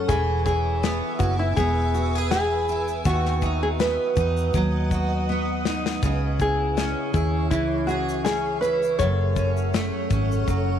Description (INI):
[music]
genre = acoustic pop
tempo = 81 BPM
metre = 4/4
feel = swing 55% on 16ths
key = C# minor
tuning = A4 = 440 Hz
[part]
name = nylon-string guitar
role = melody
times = 0.0-10.4 s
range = E4 to C#5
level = -25 LUFS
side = equal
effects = none
[part]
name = picked steel-string acoustic guitar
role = accompaniment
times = 0.0-10.8 s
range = F#2 to A4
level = -28 LUFS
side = right 1 dB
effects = double-tracked left and right
[part]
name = granular cloud pad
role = sustained chords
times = 0.0-10.8 s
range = G#4 to E6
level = -32 LUFS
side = equal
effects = built-in reverb
[part]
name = vintage muted fingered electric bass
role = bass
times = 0.0-10.8 s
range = E1 to E2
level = -25 LUFS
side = right 1 dB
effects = none
[part]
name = natural country drum kit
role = drums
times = 0.1-10.7 s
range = kick drum, shaker, snare drum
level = -28 LUFS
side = left 3 dB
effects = none
[sound]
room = light reverb, small room ambience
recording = 1960s-style stereo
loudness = -21 LUFS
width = side -9 dB against mid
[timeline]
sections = 0.0-10.8 A section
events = drum fill 5.3-6.0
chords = 0.1 E; 3.1 B/D#; 6.0 C#m; 9.0 F#m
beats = | 0.09 0.83 1.57 2.32 | 3.06 3.80 4.54 5.29 | 6.03 6.77 7.51 8.25 | 8.99 9.73 10.48